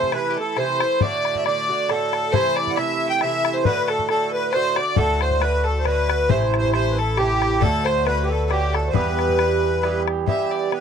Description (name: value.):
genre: celtic folk, Celtic waltz.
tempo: 136 BPM.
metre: 3/4.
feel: swing 54% on 8ths.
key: unclear.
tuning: A4 = 440 Hz.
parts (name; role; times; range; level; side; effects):
accordion; melody; 0.0-10.8 s; G4 to G5; -22 LUFS; right 1 dB; light tremolo tuning.
clear fiddle; second line; 0.0-10.8 s; G4 to G5; -26 LUFS; left 9 dB; none.
Irish bouzouki; accompaniment; 0.0-10.8 s; G2 to G4; -25 LUFS; right 8 dB; none.
bodhran; percussion; 0.0-10.8 s; none; -23 LUFS; left 8 dB; none.
upright bass; bass; 5.0-10.3 s; A1 to E2; -24 LUFS; left 1 dB; none.
room: light reverb.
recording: dry, close 1970s-style studio recording.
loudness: -18 LUFS.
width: side -7 dB against mid.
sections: 0.0-10.3 A section.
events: none.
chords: 0.0 Am; 1.0 D; 2.3 Am; 3.6 D; 6.3 Am; 7.6 D; 8.9 Em.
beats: 0.12 0.57 | 1.01 1.45 1.89 | 2.33 2.77 3.21 | 3.65 4.09 4.53 | 4.97 5.41 5.85 | 6.29 6.74 7.18 | 7.62 8.06 8.50 | 8.95 9.39 9.83 | 10.28 10.72.